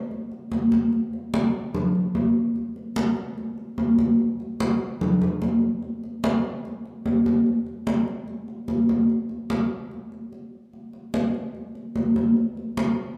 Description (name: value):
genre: jazz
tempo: 147 BPM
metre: 4/4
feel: straight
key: none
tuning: none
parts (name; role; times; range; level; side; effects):
- congas; percussion; 0.1-13.0 s; none; -25 LUFS; equal; none
room: wet large studio reverb, RT60 1.4 s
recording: heard from further back in the room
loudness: -24 LUFS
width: mono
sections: 0.0-7.5 A section; 7.5-13.2 B section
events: none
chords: none